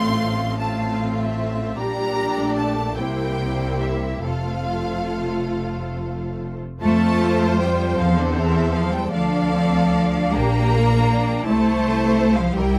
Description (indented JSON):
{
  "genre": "classical, slow romantic movement for string orchestra",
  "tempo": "46-56 BPM (dotted quarters)",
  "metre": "6/8",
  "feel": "rubato",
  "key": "F major",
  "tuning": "A4 = 440 Hz",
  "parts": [
    { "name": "rich studio violin section", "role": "melody", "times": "0.0-12.8 s", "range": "F4 to C6", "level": "-32 LUFS", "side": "equal", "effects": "none" },
    { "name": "warm studio violin section", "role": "second line", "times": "0.0-12.8 s", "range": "F4 to Bb5", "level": "-31 LUFS", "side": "equal", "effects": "none" },
    { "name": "rich studio viola section", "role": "accompaniment", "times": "0.0-12.8 s", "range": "G3 to D5", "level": "-28 LUFS", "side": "equal", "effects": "none" },
    { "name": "clear studio double bass section", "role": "bass", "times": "0.0-12.8 s", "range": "F1 to F2", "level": "-27 LUFS", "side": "equal", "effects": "none" },
    { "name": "rich studio cello section", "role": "bass", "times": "0.0-12.8 s", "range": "F2 to Bb3", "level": "-25 LUFS", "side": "equal", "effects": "none" }
  ],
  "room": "light reverb",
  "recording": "close, detailed microphones",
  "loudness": "-21 LUFS",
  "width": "mono",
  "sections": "0.0-6.8 A section; 6.8-12.8 A section",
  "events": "none",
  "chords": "0.0 F/A; 1.8 Gm/Bb; 3.0 C7; 4.2 F; 9.1 Dm7; 10.4 Gm/Bb; 11.5 C"
}